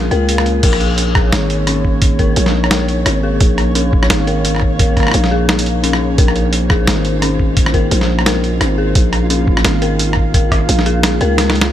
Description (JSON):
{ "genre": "half-time drum and bass", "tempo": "173 BPM", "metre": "4/4", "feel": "swing 57% on 16ths, half-time", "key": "Bb minor", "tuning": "A4 = 440 Hz", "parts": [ { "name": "dark analog pad", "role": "sustained chords", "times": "0.0-11.7 s", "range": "Bb3 to F5", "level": "-22 LUFS", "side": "right 2 dB", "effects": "chorus, sidechain pumping" }, { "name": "dark detuned synth bell", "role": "arpeggios", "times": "0.0-11.7 s", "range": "Db4 to Bb4", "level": "-21 LUFS", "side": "left 5 dB", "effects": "chorus, ping-pong delay" }, { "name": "growling 808-style bass", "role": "bass", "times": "0.0-11.7 s", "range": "Ab1 to Db2", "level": "-16 LUFS", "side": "equal", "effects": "none" }, { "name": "flickering grainy texture", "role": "texture", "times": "0.0-11.7 s", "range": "Db4 to Db5", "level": "-25 LUFS", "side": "right 2 dB", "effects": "built-in reverb" }, { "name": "boom bap sampler-style drum kit", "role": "drums", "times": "0.1-11.7 s", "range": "crash cymbal, hi-hat, rim click, snare drum", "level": "-18 LUFS", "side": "equal", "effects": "none" }, { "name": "electronic kick drum", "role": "drums", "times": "0.6-10.6 s", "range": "none", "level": "-14 LUFS", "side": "equal", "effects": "none" } ], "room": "digital ambience", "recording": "none", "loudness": "-11 LUFS", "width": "side -11 dB against mid", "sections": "0.0-11.7 A section", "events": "drop 0.0-11.7; drum fill 11.4-11.7", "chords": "0.0 Bbmadd9" }